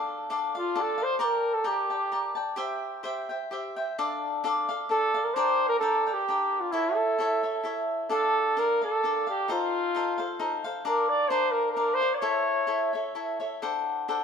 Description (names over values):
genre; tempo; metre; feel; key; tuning
mexican folk, mariachi; 131 BPM; 3/4; swing 53% on 8ths, rubato; D minor; A4 = 440 Hz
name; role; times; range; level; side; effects
cavaquinho; accompaniment; 0.0-14.2 s; D4 to A5; -28 LUFS; left 1 dB; none
mellow trumpet; melody; 0.6-2.4, 4.9-13.1 s; E4 to D5; -26 LUFS; equal; none
room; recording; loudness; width
moderate concert hall reverb, RT60 2.2 s; close, detailed microphones; -25 LUFS; side -6 dB against mid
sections
0.0-14.2 A section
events
none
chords
0.0 Dm; 1.2 Gmadd9; 2.6 C; 4.0 Dm; 5.3 Gm; 6.7 A; 8.1 Dm; 9.5 F7; 10.9 Bb; 12.2 A; 13.6 D7